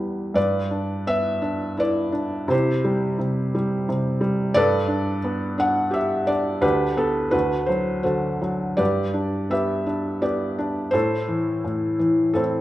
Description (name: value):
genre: classical, lyrical solo piano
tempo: 85 BPM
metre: 3/4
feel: rubato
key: G major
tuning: A4 = 439 Hz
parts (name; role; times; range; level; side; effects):
- felt-muted upright piano; solo; 0.0-12.6 s; D2 to F#5; -20 LUFS; equal; none
room: moderate recital hall reverb, RT60 1.7 s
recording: minimal, uncompressed stereo recording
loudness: -20 LUFS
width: side -15 dB against mid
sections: 0.4-12.6 A section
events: none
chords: 0.4 G6; 2.5 C; 4.6 Gadd9; 6.6 G/D; 7.3 D; 8.8 G; 10.9 Am